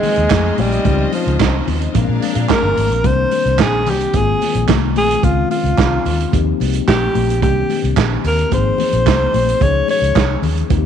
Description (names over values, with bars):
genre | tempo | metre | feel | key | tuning
disco | 110 BPM | 4/4 | straight | unclear | A4 = 440 Hz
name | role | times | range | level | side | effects
breathy alto saxophone | melody | 0.0-10.4 s | F3 to Db5 | -18 LUFS | equal | none
mellow tine electric piano | accompaniment | 0.0-10.9 s | Eb3 to Ab4 | -22 LUFS | left 16 dB | medium stereo tremolo
clear studio string section | sustained chords | 0.0-3.0 s | Db3 to F5 | -26 LUFS | left 1 dB | none
vintage drum kit | drums | 0.0-10.8 s | handclaps, hi-hat, kick drum, snare drum | -19 LUFS | right 5 dB | none
congas | percussion | 0.0-10.8 s | none | -25 LUFS | left 14 dB | none
vintage muted fingered electric bass | bass | 0.2-10.9 s | G1 to Bb2 | -18 LUFS | equal | none
room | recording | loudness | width
light reverb, small room ambience | 1960s-style stereo | -13 LUFS | side -8 dB against mid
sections
0.0-3.0 A section; 3.0-10.9 A section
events
none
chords
0.0 Ab6; 0.9 Dbmaj9; 1.9 Bb7; 3.0 Cm9; 4.1 Ab6; 5.2 Dbmaj9; 6.3 Eb6; 7.4 Cm9; 8.5 Ab6; 9.6 Dbmaj9